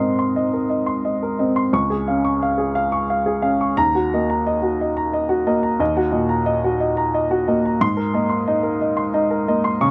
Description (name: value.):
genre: neoclassical minimalist piano.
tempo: 89 BPM.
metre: 3/4.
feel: rubato.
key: unclear.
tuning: A4 = 439 Hz.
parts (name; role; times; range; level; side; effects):
warm baby grand piano; solo; 0.0-9.9 s; Db2 to Db6; -20 LUFS; equal; none.
room: light reverb.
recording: none.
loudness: -20 LUFS.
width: mono.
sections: 0.0-9.9 A section.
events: none.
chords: 0.0 Abadd9; 1.7 Db; 3.8 Ebm; 7.8 Abadd9.